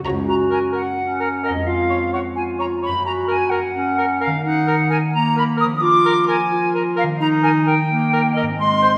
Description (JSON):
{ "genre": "cinematic, playful, whimsical film cue", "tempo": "86 BPM (dotted quarters)", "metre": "6/8", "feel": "straight", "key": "F# major, Eb major from 5.8 s", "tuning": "A4 = 440 Hz", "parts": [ { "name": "concert harp", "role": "arpeggios", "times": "0.0-9.0 s", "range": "E#2 to Eb5", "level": "-27 LUFS", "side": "equal", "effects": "none" }, { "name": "mellow clarinet", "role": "second line", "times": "0.3-9.0 s", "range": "Ab3 to F#4", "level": "-23 LUFS", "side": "equal", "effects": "none" }, { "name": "small flute group", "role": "second line", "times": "0.3-9.0 s", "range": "Eb5 to D#6", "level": "-23 LUFS", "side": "equal", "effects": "none" }, { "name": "warm cor anglais", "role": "second line", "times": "0.5-8.9 s", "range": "Bb4 to C#5", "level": "-28 LUFS", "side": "equal", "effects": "none" }, { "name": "cymbal swell", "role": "percussion", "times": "8.6-9.0 s", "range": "none", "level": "barely audible", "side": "none", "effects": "none" } ], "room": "wet scoring stage reverb, RT60 1.9 s", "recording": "none", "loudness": "-19 LUFS", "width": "mono", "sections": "0.3-9.0 A section", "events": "none", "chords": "0.3 F#; 4.4 D#m; 5.8 Bb7/F; 7.2 Eb", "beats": "| 0.28 0.97 | 1.67 2.36 | 3.05 3.74 | 4.44 5.13 | 5.82 6.52 | 7.21 7.90 | 8.60" }